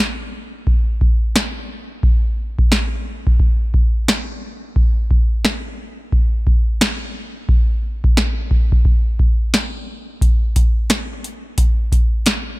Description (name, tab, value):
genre	hip hop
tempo	88 BPM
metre	4/4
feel	swing 61% on 16ths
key	none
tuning	none
part	booming analog drum machine	drums	0.0-12.5 s	hi-hat, kick drum, snare drum	-15 LUFS	equal	none
room	little or no reverb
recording	none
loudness	-15 LUFS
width	side -20 dB against mid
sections	0.0-12.6 A section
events	break 0.0-10.2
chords	none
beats	0.67 1.35 | 2.03 2.71 3.40 4.08 | 4.76 5.44 6.12 6.81 | 7.49 8.17 8.85 9.53 | 10.21 10.90 11.58 12.26